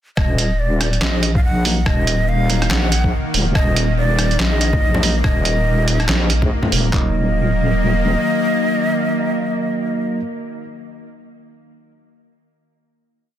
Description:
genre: deep dubstep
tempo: 142 BPM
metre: 4/4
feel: swing 58% on 16ths, half-time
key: Eb harmonic minor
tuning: A4 = 440 Hz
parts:
  - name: breathy ney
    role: melody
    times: 0.2-10.2 s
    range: D5 to Gb5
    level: -24 LUFS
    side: right 1 dB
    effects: dub echo
  - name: bowed-like drone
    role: sustained chords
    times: 1.0-10.2 s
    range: Eb3 to Bb3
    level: -24 LUFS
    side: left 2 dB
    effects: built-in reverb
  - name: deep soft wobble bass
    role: bass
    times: 0.2-8.2 s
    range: Eb1 to Bb1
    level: -18 LUFS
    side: equal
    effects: chorus
  - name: trip hop sampler-style drum kit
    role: drums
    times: 0.2-7.0 s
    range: handclaps, kick drum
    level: -18 LUFS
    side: equal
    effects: overdrive
  - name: trip hop sampler-style drum kit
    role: drums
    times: 0.2-6.8 s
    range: handclaps, hi-hat, rim click, snare drum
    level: -21 LUFS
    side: right 1 dB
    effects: overdrive
  - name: bell-like tine electric piano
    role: stabs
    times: 1.7-10.2 s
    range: Gb3 to Eb4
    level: -26 LUFS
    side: right 3 dB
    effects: lush chorus, dub echo
  - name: congas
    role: percussion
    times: 4.7-6.7 s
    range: none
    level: -24 LUFS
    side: left 2 dB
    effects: none
room: little or no reverb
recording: dense, heavily limited modern master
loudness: -15 LUFS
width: side -11 dB against mid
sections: 0.2-6.9 drop; 6.9-10.3 final chord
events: drop 0.2-6.9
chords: 0.2 Eb5; 6.9 Ebm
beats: | 0.17 0.60 1.02 1.44 | 1.86 2.29 2.71 3.13 | 3.55 3.98 4.40 4.82 | 5.24 5.67 6.09 6.51 | 6.93 7.36 7.78 8.20 | 8.62 9.05 9.47 9.89

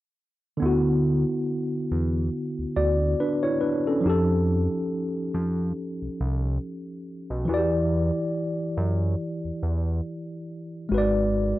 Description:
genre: lo-fi hip hop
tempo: 70 BPM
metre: 4/4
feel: swing 57% on 16ths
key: unclear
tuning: A4 = 440 Hz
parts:
  - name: mellow tine electric piano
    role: accompaniment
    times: 0.6-11.6 s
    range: D3 to D5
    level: -25 LUFS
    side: equal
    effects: medium stereo tremolo, cassette tape, low-pass filter
  - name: fat analog bass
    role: bass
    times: 0.6-11.5 s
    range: G#1 to F#2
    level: -25 LUFS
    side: equal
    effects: none
room: moderate studio reverb, RT60 0.6 s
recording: none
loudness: -23 LUFS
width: side -16 dB against mid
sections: 0.6-11.6 A section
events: none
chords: 0.6 D69; 4.0 F9; 7.5 Em7; 10.9 G#m7b5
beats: | 0.61 1.47 2.33 3.19 | 4.04 4.90 5.76 6.62 | 7.47 8.33 9.19 10.04 | 10.90

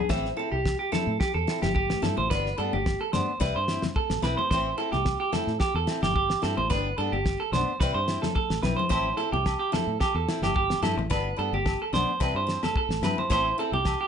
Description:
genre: highlife guitar band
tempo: 109 BPM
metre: 4/4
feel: swing 53% on 16ths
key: A minor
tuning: A4 = 440 Hz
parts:
  - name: clean electric guitar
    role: arpeggios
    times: 0.0-14.1 s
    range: G4 to E5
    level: -27 LUFS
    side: right 4 dB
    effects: slapback echo
  - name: picked old ladder-braced acoustic guitar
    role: accompaniment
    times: 0.1-13.8 s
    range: E3 to E4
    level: -33 LUFS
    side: left 7 dB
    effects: none
  - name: fingered electric bass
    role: bass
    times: 0.1-13.9 s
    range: G1 to A2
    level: -31 LUFS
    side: equal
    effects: none
  - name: damped 70s drum kit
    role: drums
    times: 0.1-14.0 s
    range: kick drum, snare drum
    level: -29 LUFS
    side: equal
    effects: none
  - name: congas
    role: percussion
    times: 0.9-13.9 s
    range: none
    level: -34 LUFS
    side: left 6 dB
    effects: none
  - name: agogo bells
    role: percussion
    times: 8.9-14.0 s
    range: none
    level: -37 LUFS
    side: left 8 dB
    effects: none
room: light reverb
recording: nothing above 10.5 kHz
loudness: -24 LUFS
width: side -8 dB against mid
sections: 0.1-14.1 A section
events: drum fill 8.5-8.9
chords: 0.1 Am; 2.3 G; 3.4 C; 4.5 Am; 6.7 G; 7.8 C; 8.9 Am; 11.1 G; 12.2 C; 13.3 Am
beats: | 0.10 0.65 1.21 1.76 | 2.31 2.86 3.41 3.96 | 4.51 5.06 5.61 6.16 | 6.71 7.26 7.81 8.36 | 8.91 9.46 10.01 10.56 | 11.11 11.66 12.21 12.76 | 13.31 13.86

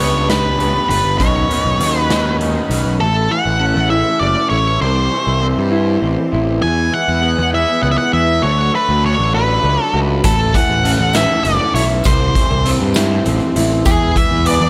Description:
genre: psychedelic rock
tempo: 66 BPM (dotted quarters)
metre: 6/8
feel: straight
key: unclear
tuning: A4 = 440 Hz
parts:
  - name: octave-fuzz lead guitar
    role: melody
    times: 0.0-14.7 s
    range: G#4 to G#5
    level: -20 LUFS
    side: equal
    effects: distortion, tape echo
  - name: bright chamber string section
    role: sustained chords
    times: 0.0-14.7 s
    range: C#3 to B5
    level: -30 LUFS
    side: equal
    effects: none
  - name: electric guitar through a small old amp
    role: riff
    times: 0.0-14.7 s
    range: A2 to F#4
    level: -22 LUFS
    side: equal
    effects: phaser
  - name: fuzz picked electric bass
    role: bass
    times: 0.0-14.7 s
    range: F#1 to G2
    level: -20 LUFS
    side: equal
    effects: overdrive
  - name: raw garage drum kit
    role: drums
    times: 0.0-2.8, 10.2-14.6 s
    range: hi-hat, kick drum, snare drum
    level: -21 LUFS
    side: equal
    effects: none
  - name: tambourine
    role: percussion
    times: 10.2-14.0 s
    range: none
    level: -34 LUFS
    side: equal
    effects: none
room: light reverb, studio reverb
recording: none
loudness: -15 LUFS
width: mono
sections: 0.0-3.0 A section; 3.0-14.7 B section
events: none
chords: 0.0 G; 1.2 Badd9; 3.0 A; 4.8 C; 6.6 E; 8.4 D; 10.2 A; 12.0 C; 13.9 E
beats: 0.29 | 1.19 2.10 | 3.00 3.91 | 4.82 5.72 | 6.63 7.53 | 8.44 9.34 | 10.24 11.14 | 12.05 12.95 | 13.85

